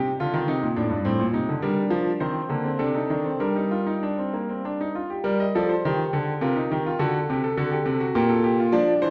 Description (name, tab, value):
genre	classical, baroque-style 3-part fugue for grand piano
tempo	103 BPM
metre	3/4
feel	straight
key	G minor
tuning	A4 = 442 Hz
part	clear concert grand piano	solo	0.0-9.1 s	G2 to Eb5	-24 LUFS	equal	none
room	wet recital hall reverb, RT60 1.4 s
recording	heard from further back in the room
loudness	-24 LUFS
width	mono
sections	0.0-5.2 A section; 5.2-9.1 B section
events	none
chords	0.0 Cm; 1.1 Adim; 1.6 Gm; 2.2 Cm/Eb; 2.8 D5/C; 3.4 Gm; 6.4 Cm; 7.0 D7; 8.2 Gm/Bb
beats	0.49 1.07 | 1.64 2.23 2.82 | 3.42 4.03 4.64 | 5.24 5.83 6.41 | 7.00 7.58 8.16 | 8.74